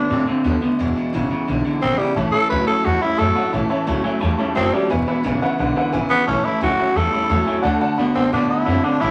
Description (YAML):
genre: rock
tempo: 175 BPM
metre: 4/4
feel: straight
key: A major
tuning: A4 = 440 Hz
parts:
  - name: growling tenor saxophone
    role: melody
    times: 0.0-9.1 s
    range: G3 to B4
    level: -22 LUFS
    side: equal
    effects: none
  - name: picked steel-string acoustic guitar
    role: accompaniment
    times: 0.0-9.1 s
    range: E2 to F#4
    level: -30 LUFS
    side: equal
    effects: none
  - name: electric guitar through a small old amp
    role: riff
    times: 0.0-9.1 s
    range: E2 to C4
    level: -23 LUFS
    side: equal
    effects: none
  - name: upright bass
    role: bass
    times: 0.1-9.1 s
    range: E1 to A2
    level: -28 LUFS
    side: equal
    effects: none
  - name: honky-tonk upright piano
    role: accompaniment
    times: 2.2-9.1 s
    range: B4 to B5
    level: -27 LUFS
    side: equal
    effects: none
room: moderate large studio reverb, RT60 0.8 s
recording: vinyl crackle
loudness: -19 LUFS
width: mono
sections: 0.0-7.6 A section; 7.6-9.1 B section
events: none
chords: 0.0 D; 0.8 E7; 2.2 A; 4.9 E7; 6.3 A; 7.6 D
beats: 0.11 0.45 | 0.79 1.14 1.48 1.82 | 2.16 2.51 2.85 3.19 | 3.54 3.88 4.22 4.56 | 4.91 5.25 5.59 5.93 | 6.28 6.62 6.96 7.30 | 7.64 7.99 8.33 8.67 | 9.02